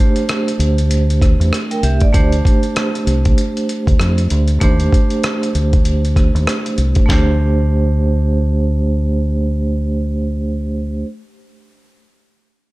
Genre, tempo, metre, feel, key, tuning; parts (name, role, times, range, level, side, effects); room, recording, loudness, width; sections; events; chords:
hip hop, jazz-hop; 97 BPM; 4/4; swing 60% on 16ths; A4 = 441 Hz
vibraphone with medium hard mallets; accompaniment; 0.0-11.0 s; A3 to G5; -19 LUFS; right 2 dB
dusty soul sampler-style drum kit; drums; 0.0-7.3 s; hi-hat, kick drum, rim click, snare drum; -16 LUFS; equal
deep dub fingered electric bass; bass; 0.6-11.0 s; C2 to F2; -16 LUFS; equal
little or no reverb; -13 LUFS; side -19 dB against mid
0.0-7.1 A section; 7.1-9.6 B section
0.0 C69; 2.1 D7(no3); 4.6 Ebmaj7#11; 7.1 D5